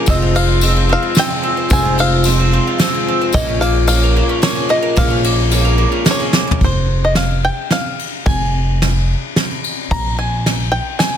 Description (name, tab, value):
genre	indie folk with a building arrangement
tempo	110 BPM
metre	3/4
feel	straight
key	F minor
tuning	A4 = 440 Hz
part	bright upright piano	accompaniment	0.0-6.6 s	F1 to Eb5	-24 LUFS	right 7 dB	none
part	picked twelve-string acoustic guitar	accompaniment	0.0-6.6 s	F2 to F4	-22 LUFS	left 7 dB	none
part	bowl-back mandolin	arpeggios	0.0-6.6 s	Bb3 to C5	-22 LUFS	right 5 dB	slapback echo
part	bluegrass banjo	melody	0.1-11.2 s	C5 to Bb5	-20 LUFS	equal	none
part	upright bass	bass	0.1-10.8 s	F1 to Bb1	-16 LUFS	equal	none
part	soft brush drum kit	drums	0.1-11.1 s	kick drum, ride cymbal, snare drum, toms	-18 LUFS	equal	none
part	tambourine	percussion	0.1-6.3 s	none	-27 LUFS	left 10 dB	none
room	light reverb, small room ambience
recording	dense, heavily limited modern master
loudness	-13 LUFS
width	side -9 dB against mid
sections	0.0-6.6 A section; 6.6-11.2 B section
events	drum fill 6.3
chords	0.1 Fm; 3.3 Bbm7; 6.6 Fm; 9.9 Bb7(no3)